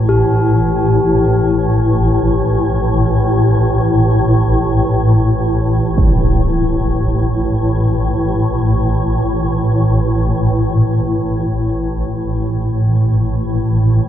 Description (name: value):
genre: dark ambient drone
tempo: free time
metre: none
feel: none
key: unclear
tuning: A4 = 440 Hz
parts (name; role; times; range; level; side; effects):
- swarming drone; drone; 0.0-14.1 s; A1 to A2; -13 LUFS; equal; built-in reverb
- quartz singing bowl; texture; 0.1-14.1 s; G4; -22 LUFS; left 4 dB; none
- impact; percussion; 6.0-6.2 s; none; -19 LUFS; right 1 dB; low-pass filter on sfx
room: wet huge ambient reverb, RT60 7.8 s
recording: none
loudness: -12 LUFS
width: side -10 dB against mid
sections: 0.0-14.1 A section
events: none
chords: 0.1 Gsus2/A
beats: free time